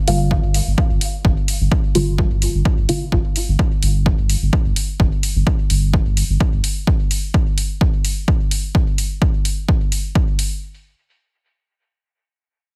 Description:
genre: dub techno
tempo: 128 BPM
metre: 4/4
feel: straight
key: G minor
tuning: A4 = 440 Hz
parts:
  - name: deep mellow chord stab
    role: stabs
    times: 0.1-3.1 s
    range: D3 to F4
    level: -24 LUFS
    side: equal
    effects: chorus, phaser, sidechain pumping, dub echo
  - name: warm sub bass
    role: bass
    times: 0.1-6.6 s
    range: G1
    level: -21 LUFS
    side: equal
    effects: sidechain pumping
  - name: electronic hi-hat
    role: drums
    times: 0.1-10.5 s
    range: none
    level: -27 LUFS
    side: equal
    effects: overdrive, studio reverb
  - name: electronic kick drum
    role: drums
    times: 0.3-10.3 s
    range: none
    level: -20 LUFS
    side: equal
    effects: studio reverb
room: little or no reverb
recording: heavily compressed radio sound, multiband compression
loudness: -18 LUFS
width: mono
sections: 0.0-10.6 A section; 10.6-12.8 B section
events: filter sweep on synth stab 0.0-3.1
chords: none

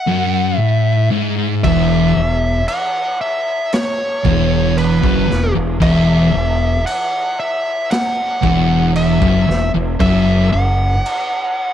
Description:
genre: stoner and doom metal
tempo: 58 BPM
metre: 4/4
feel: straight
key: unclear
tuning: A4 = 440 Hz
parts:
  - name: fuzz lead guitar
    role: melody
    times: 0.0-11.7 s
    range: B4 to F#5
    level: -19 LUFS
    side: equal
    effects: distortion
  - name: thick fuzz guitar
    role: riff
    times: 0.1-10.9 s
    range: E2 to A2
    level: -17 LUFS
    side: left 8 dB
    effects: distortion
  - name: thick fuzz guitar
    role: riff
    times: 0.1-10.9 s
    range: E2 to A2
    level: -18 LUFS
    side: right 8 dB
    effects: distortion
  - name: growling fingered electric bass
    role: bass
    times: 1.6-11.0 s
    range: E1 to F#1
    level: -19 LUFS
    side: right 1 dB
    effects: overdrive
  - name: raw garage drum kit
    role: drums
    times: 1.6-11.3 s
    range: crash cymbal, kick drum, snare drum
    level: -22 LUFS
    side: right 1 dB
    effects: none
room: light reverb, studio reverb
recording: none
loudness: -13 LUFS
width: side -10 dB against mid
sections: 0.0-11.7 A section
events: none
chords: 0.0 F#5; 1.6 Esus2; 10.0 F#5

